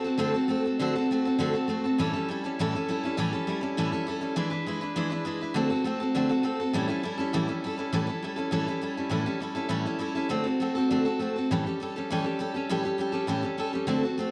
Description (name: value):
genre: rock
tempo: 202 BPM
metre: 4/4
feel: straight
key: A mixolydian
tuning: A4 = 440 Hz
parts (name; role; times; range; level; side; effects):
- picked steel-string acoustic guitar; solo; 0.0-14.3 s; A2 to B4; -28 LUFS; equal; slapback echo
room: light reverb, small room ambience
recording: none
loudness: -28 LUFS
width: mono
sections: 0.0-9.1 A section; 9.1-14.3 B section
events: none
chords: 0.0 D7; 2.0 A7; 4.4 E7; 5.6 D7; 6.7 A7; 10.3 D7; 11.5 A7